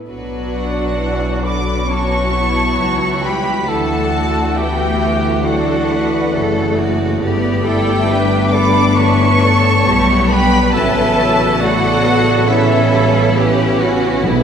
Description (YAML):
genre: cinematic, emotional film score for orchestra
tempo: 68 BPM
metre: 4/4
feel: rubato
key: B minor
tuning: A4 = 440 Hz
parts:
  - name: bright studio violin section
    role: second line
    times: 0.1-14.4 s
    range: A3 to D5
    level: -25 LUFS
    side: left 2 dB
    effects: none
  - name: rich studio viola section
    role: accompaniment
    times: 0.1-14.4 s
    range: C#3 to E4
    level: -20 LUFS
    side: left 1 dB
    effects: none
  - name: warm French horn section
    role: sustained chords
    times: 0.1-14.4 s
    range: C#3 to E4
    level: -20 LUFS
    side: left 1 dB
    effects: none
  - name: clear studio double bass section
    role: bass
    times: 0.1-14.4 s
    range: F#1 to D2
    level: -19 LUFS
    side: right 1 dB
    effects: none
  - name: rich studio violin section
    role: melody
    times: 0.5-13.8 s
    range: E5 to D6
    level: -21 LUFS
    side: left 1 dB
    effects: none
  - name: bright large flute ensemble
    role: second line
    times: 0.5-13.8 s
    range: C#5 to B5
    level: -22 LUFS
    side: right 1 dB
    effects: none
  - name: warm cor anglais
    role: second line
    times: 0.5-13.8 s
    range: E4 to D5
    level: -22 LUFS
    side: right 2 dB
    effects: none
  - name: clear studio cello section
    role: bass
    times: 1.9-14.4 s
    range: E4 to B4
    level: -22 LUFS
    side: right 1 dB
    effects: none
  - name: timpani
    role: percussion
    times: 14.2-14.4 s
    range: B2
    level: -15 LUFS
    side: right 1 dB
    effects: none
room: wet scoring stage reverb, RT60 2.0 s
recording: heard from further back in the room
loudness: -12 LUFS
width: side -7 dB against mid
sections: 0.1-14.4 A section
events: none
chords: 0.1 Bm; 3.7 Dadd9; 7.2 Gadd9; 10.7 Aadd9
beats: | 0.09 0.99 1.89 2.79 | 3.68 4.57 5.46 6.33 | 7.22 8.09 8.97 9.86 | 10.74 11.62 12.49 13.37 | 14.24